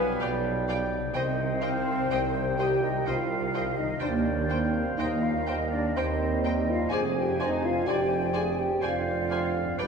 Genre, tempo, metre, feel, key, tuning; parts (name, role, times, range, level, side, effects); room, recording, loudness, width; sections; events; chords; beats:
classical, slow romantic movement for symphony orchestra; 63 BPM; 3/4; rubato; C minor; A4 = 440 Hz
bright large flute ensemble; second line; 0.0-9.9 s; B4 to Ab5; -36 LUFS; left 2 dB
clear oboe; second line; 0.0-9.9 s; F5 to Bb5; -38 LUFS; equal
dark clarinet; second line; 0.0-9.9 s; B4 to G5; -36 LUFS; right 1 dB
bright trombone section; sustained chords; 0.0-9.9 s; D3 to C4; -36 LUFS; right 4 dB
mellow French horn section; sustained chords; 0.0-9.9 s; B3 to Ab4; -30 LUFS; left 1 dB
concert harp; arpeggios; 0.0-9.9 s; F2 to D5; -39 LUFS; left 8 dB
muted chamber cello section; bass; 0.0-9.9 s; Eb2 to C3; -35 LUFS; right 2 dB
muted chamber double bass section; bass; 0.0-9.9 s; F1 to Eb2; -35 LUFS; right 2 dB
warm tuba; bass; 0.0-9.9 s; F1 to Eb2; -34 LUFS; right 4 dB
muted chamber violin section; melody; 0.2-9.9 s; G5 to Ab5; -40 LUFS; left 1 dB
muted chamber violin section; second line; 0.2-9.9 s; C5 to F5; -43 LUFS; left 3 dB
muted chamber viola section; accompaniment; 0.2-9.9 s; B4 to D5; -39 LUFS; right 1 dB
timpani; percussion; 1.1-2.5 s; barely audible
wet scoring stage reverb, RT60 2.0 s; minimal, uncompressed stereo recording; -25 LUFS; side -5 dB against mid
0.0-9.9 A section
0.0 G7/B; 1.1 Cm; 4.0 Cm/Eb; 6.9 Dm7b5/F
0.20 | 1.14 2.10 3.06 | 4.01 4.98 5.96 | 6.92 7.87 8.82 | 9.79